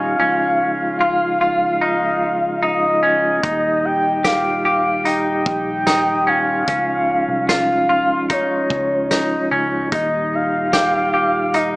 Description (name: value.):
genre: dream pop.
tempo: 74 BPM.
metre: 4/4.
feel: straight.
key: unclear.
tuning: A4 = 440 Hz.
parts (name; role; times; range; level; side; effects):
soft octave-layered synth lead; melody; 0.0-11.8 s; Db5 to G5; -19 LUFS; equal; chorus, phaser, tape echo.
mellow tonewheel organ; sustained chords; 0.0-11.8 s; Bb2 to G4; -24 LUFS; equal; chorus vibrato, stopped rotary speaker.
semi-hollow electric guitar; arpeggios; 0.0-11.8 s; Db4 to G4; -20 LUFS; equal; wide subtle chorus, tape echo.
vintage muted picked electric bass; bass; 3.4-11.8 s; Bb1 to Eb2; -33 LUFS; equal; none.
loose indie drum kit; drums; 3.4-11.7 s; hi-hat, kick drum, snare drum, tambourine; -23 LUFS; equal; none.
room: wet concert hall reverb, RT60 2.1 s.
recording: small speaker sound.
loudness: -15 LUFS.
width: side -23 dB against mid.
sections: 0.0-11.8 A section.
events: none.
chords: 0.2 Dbadd9; 3.4 Eb; 6.7 Dbadd9; 9.9 Eb.